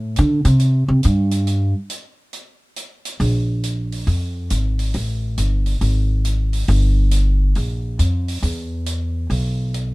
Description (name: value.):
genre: jazz piano trio.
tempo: 138 BPM.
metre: 4/4.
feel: swing 66% on 8ths.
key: unclear.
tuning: A4 = 442 Hz.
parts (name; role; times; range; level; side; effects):
upright bass; bass; 0.0-9.9 s; G1 to D3; -17 LUFS; equal; none.
hi-hat; drums; 0.2-9.9 s; none; -32 LUFS; right 2 dB; none.
room: little or no reverb.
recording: none.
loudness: -17 LUFS.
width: side -22 dB against mid.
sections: 0.0-3.2 A section; 3.2-9.9 B section.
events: upright bass solo 0.0-3.2.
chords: none.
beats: 0.16 0.60 1.03 | 1.47 1.90 2.34 2.77 | 3.21 3.64 4.08 4.51 | 4.95 5.38 5.82 6.25 | 6.69 7.12 7.56 7.99 | 8.43 8.86 9.30 9.73.